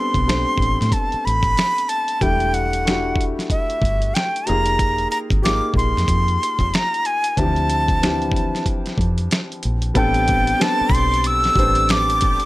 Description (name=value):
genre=R&B, neo-soul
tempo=93 BPM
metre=4/4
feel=swing 60% on 16ths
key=A minor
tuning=A4 = 438 Hz
part: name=breathy bright jazz flute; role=melody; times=0.0-12.5 s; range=E5 to E6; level=-20 LUFS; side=equal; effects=none
part: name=clear upright piano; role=accompaniment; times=0.0-12.5 s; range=E3 to C5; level=-25 LUFS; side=left 1 dB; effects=none
part: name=dusty soul sampler-style drum kit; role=drums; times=0.1-12.5 s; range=finger snaps, hi-hat, kick drum, snare drum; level=-22 LUFS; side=equal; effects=none
part: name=deep dub fingered electric bass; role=bass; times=0.2-12.4 s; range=E1 to A2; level=-22 LUFS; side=equal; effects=none
part: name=tonewheel organ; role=sustained chords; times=9.9-12.5 s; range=G4 to A5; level=-32 LUFS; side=right 1 dB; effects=fast rotary speaker, chorus vibrato
room=light reverb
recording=none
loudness=-16 LUFS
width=side -18 dB against mid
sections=0.0-10.0 A section; 10.0-12.5 B section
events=none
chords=0.0 Am11; 2.2 Em11; 4.5 Fm11; 7.4 Dm11; 10.0 Am11